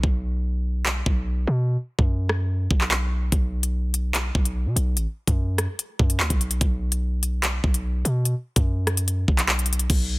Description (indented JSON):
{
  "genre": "hip hop, drill",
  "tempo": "146 BPM",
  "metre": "4/4",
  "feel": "half-time",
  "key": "unclear",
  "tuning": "A4 = 441 Hz",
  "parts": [
    { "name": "hard-hitting 808-style bass", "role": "bass", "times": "0.0-10.2 s", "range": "A1 to B2", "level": "-23 LUFS", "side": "equal", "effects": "none" },
    { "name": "drill drum kit", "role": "drums", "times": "0.0-10.0 s", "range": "crash cymbal, handclaps, hi-hat, kick drum, rim click", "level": "-22 LUFS", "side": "equal", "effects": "overdrive" }
  ],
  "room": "digital ambience",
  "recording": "dense, heavily limited modern master",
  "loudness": "-21 LUFS",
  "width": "side -21 dB against mid",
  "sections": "0.0-9.9 A section",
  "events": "break 0.0-3.3",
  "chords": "none"
}